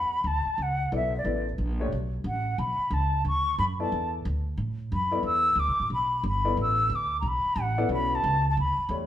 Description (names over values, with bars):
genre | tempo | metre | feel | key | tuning
modal jazz | 180 BPM | 4/4 | swing 64% on 8ths | E dorian | A4 = 440 Hz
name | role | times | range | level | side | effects
mellow jazz flute | melody | 0.0-9.0 s | D5 to E6 | -26 LUFS | left 1 dB | none
upright bass | bass | 0.0-9.1 s | G1 to A2 | -29 LUFS | equal | none
warm baby grand piano | accompaniment | 0.9-9.1 s | A3 to E5 | -32 LUFS | left 4 dB | none
room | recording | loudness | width
moderate large studio reverb, RT60 1.0 s | band playing live in one room | -24 LUFS | side -11 dB against mid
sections
0.0-9.1 A section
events
none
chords
0.0 E9sus4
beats
0.25 0.59 0.92 | 1.25 1.58 1.92 2.25 | 2.58 2.91 3.25 3.58 | 3.91 4.24 4.58 4.91 | 5.24 5.57 5.91 6.24 | 6.57 6.90 7.24 7.57 | 7.90 8.23 8.56 8.89